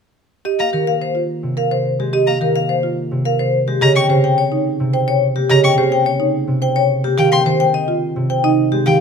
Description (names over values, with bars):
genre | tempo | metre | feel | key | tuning
classical, minimalist pattern music | 107 BPM | 3/4 | straight | Ab major | A4 = 440 Hz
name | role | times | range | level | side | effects
vibraphone with medium hard mallets | melody | 0.5-9.0 s | G4 to G5 | -18 LUFS | left 6 dB | none
marimba with soft mallets | arpeggios | 0.5-9.0 s | Eb4 to C5 | -20 LUFS | right 10 dB | none
concert harp | accompaniment | 0.6-9.0 s | C3 to C4 | -19 LUFS | equal | none
rich violin | arpeggios | 0.6-9.0 s | G5 to Db6 | -20 LUFS | left 2 dB | none
room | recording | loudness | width
light reverb | close, detailed microphones | -14 LUFS | side -6 dB against mid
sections
0.5-9.0 A section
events
none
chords
0.5 Ab69; 3.8 Eb7 (rootless); 7.2 Fm7 (rootless)